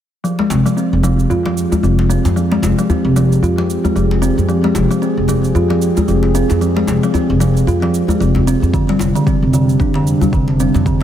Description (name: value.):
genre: organic downtempo.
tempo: 113 BPM.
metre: 4/4.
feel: swing 58% on 16ths.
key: F dorian.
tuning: A4 = 440 Hz.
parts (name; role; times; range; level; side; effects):
warbly tape-like pad; sustained chords; 0.8-11.0 s; C3 to Ab4; -21 LUFS; equal; chorus, built-in reverb, sidechain pumping.
kalimba; arpeggios; 0.2-11.0 s; D3 to F4; -16 LUFS; left 1 dB; low-pass filter, digital delay.
shaker; drums; 0.2-11.0 s; none; -32 LUFS; right 8 dB; none.
djembe; percussion; 0.4-11.0 s; none; -23 LUFS; equal; none.
upright bass; bass; 0.5-11.0 s; F1 to F2; -16 LUFS; equal; none.
electronic kick drum; drums; 8.7-11.0 s; none; -18 LUFS; equal; none.
room: light reverb, small room reverb.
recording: none.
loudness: -12 LUFS.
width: side -10 dB against mid.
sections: 0.2-11.0 A section.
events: filter sweep on kalimba 0.2-11.0; filter sweep on ambient pad 0.2-11.0.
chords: 0.2 Fmadd9; 8.7 Csus2/F.